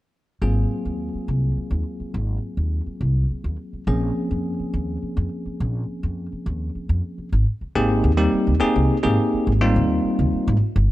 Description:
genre	electric jazz fusion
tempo	70 BPM (dotted quarters)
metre	6/8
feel	straight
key	Ab mixolydian, Ab major from 7.3 s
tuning	A4 = 442 Hz
part	bell-like tine electric piano	accompaniment	0.4-10.6 s	F3 to Ab4	-24 LUFS	equal	fast stereo tremolo
part	upright bass	bass	0.4-10.9 s	G1 to F2	-21 LUFS	equal	none
room	light reverb, small room ambience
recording	dark, warm production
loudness	-20 LUFS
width	side -16 dB against mid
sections	0.4-7.3 A section; 7.3-10.9 B section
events	none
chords	0.4 Ab13; 3.9 Bbm9; 7.3 Abmaj9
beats	| 0.42 1.28 | 2.15 3.01 | 3.88 4.74 | 5.60 6.46 | 7.32 8.18 | 9.04 9.90 | 10.76

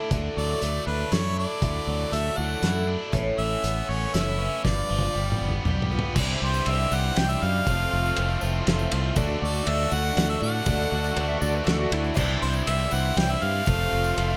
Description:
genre	folk rock and heartland rock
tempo	120 BPM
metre	3/4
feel	straight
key	D major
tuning	A4 = 441 Hz
part	picked twelve-string acoustic guitar	accompaniment	0.0-14.4 s	A2 to D5	-35 LUFS	equal	none
part	biting overdriven guitar	riff	0.0-14.4 s	F2 to G4	-34 LUFS	equal	none
part	fingered electric bass	bass	0.1-14.4 s	F1 to A2	-30 LUFS	equal	none
part	loose indie drum kit	drums	0.1-14.3 s	crash cymbal, hi-hat, kick drum, ride cymbal, snare drum, toms	-31 LUFS	equal	none
part	clear harmonica	melody	0.4-14.4 s	B4 to G5	-31 LUFS	equal	none
part	musette accordion	sustained chords	6.2-14.4 s	E4 to F#5	-40 LUFS	equal	none
part	tambourine	percussion	6.2-14.4 s	none	-47 LUFS	equal	none
part	overdriven slide guitar	second line	11.2-14.4 s	D4 to F#5	-34 LUFS	equal	none
room	light reverb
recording	none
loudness	-25 LUFS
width	mono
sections	0.0-6.2 A section; 6.2-14.4 B section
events	drum fill 4.7-6.2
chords	0.1 Dadd9; 3.1 Aadd9; 4.7 G7; 6.2 Cadd9; 7.7 Fmaj7; 9.2 D; 12.2 Cadd9; 13.7 Fmaj7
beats	| 0.11 0.62 1.12 | 1.63 2.13 2.63 | 3.14 3.64 4.15 | 4.65 5.16 5.66 | 6.16 6.66 7.17 | 7.67 8.17 8.67 | 9.17 9.67 10.17 | 10.67 11.17 11.67 | 12.17 12.67 13.17 | 13.67 14.17

